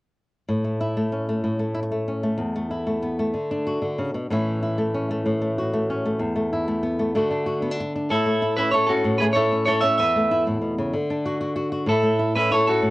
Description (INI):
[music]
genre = highlife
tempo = 126 BPM (dotted quarters)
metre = 12/8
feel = straight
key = A major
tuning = A4 = 440 Hz
[part]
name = flamenco guitar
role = accompaniment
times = 0.5-12.9 s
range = E2 to F#4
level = -23 LUFS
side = equal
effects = cassette tape
[part]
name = clean electric guitar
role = melody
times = 8.1-12.9 s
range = E4 to E5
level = -19 LUFS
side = right 1 dB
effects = cassette tape
[sound]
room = moderate booth ambience, RT60 0.2 s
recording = home recording on cassette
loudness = -21 LUFS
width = side -18 dB against mid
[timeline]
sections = 0.5-8.1 A section; 8.1-12.9 B section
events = none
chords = 0.5 A; 2.4 Esus4; 3.3 D; 4.3 A; 6.2 Esus4; 7.1 D; 8.1 A; 10.0 Esus4; 10.9 D; 11.9 A